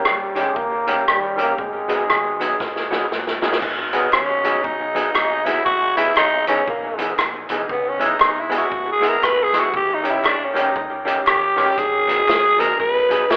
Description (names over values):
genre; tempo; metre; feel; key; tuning
ska; 118 BPM; 4/4; swing 61% on 8ths; G# minor; A4 = 440 Hz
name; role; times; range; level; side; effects
bright trombone; melody; 0.0-3.1 s; G3 to A#3; -26 LUFS; equal; none
deep dub fingered electric bass; bass; 0.1-13.4 s; E1 to D#2; -43 LUFS; equal; none
vintage drum kit; drums; 0.1-13.4 s; crash cymbal, hi-hat, kick drum, rim click, snare drum; -24 LUFS; equal; none
vintage hollow-body jazz guitar; accompaniment; 0.3-13.2 s; D#3 to G#4; -25 LUFS; equal; tape echo
growling tenor saxophone; melody; 3.9-13.4 s; A#3 to B4; -21 LUFS; equal; none
group handclap; percussion; 4.1-13.4 s; none; -35 LUFS; equal; none
room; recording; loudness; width
wet large studio reverb, RT60 1.2 s; band playing live in one room, telephone sound; -19 LUFS; mono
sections
0.0-3.6 A section; 3.6-13.4 B section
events
drum fill 2.6-3.6; tenor saxophone solo 3.6-13.4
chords
0.0 D#7; 1.6 G#m7; 5.7 Emaj7; 7.7 C#m7; 9.7 D#7; 11.8 G#m7